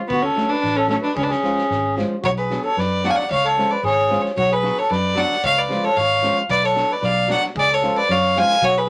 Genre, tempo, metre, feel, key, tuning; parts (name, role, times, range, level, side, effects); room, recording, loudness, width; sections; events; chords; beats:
balkan folk, Balkan wedding band; 113 BPM; 2/4; straight; C# phrygian dominant; A4 = 440 Hz
rich fiddle; melody; 0.1-8.9 s; B3 to G#5; -22 LUFS; equal
mellow accordion; second line; 0.1-8.9 s; F#4 to E#5; -24 LUFS; equal
fingered electric bass; bass; 0.1-8.9 s; G#1 to F#2; -28 LUFS; equal
loose indie drum kit; percussion; 0.1-8.8 s; kick drum, snare drum; -39 LUFS; equal
nylon-string guitar; accompaniment; 0.4-8.9 s; E#3 to F#4; -28 LUFS; equal
wet studio ambience, RT60 0.5 s; vinyl crackle; -19 LUFS; mono
0.0-2.2 A section; 2.2-8.9 B section
0.1 D; 1.2 C#; 2.2 Bm; 3.3 C#; 4.4 Bm; 5.4 C#; 6.5 Bm; 7.6 C#
| 0.10 0.64 | 1.17 1.70 | 2.24 2.77 | 3.30 3.84 | 4.37 4.90 | 5.43 5.97 | 6.50 7.03 | 7.57 8.10 | 8.63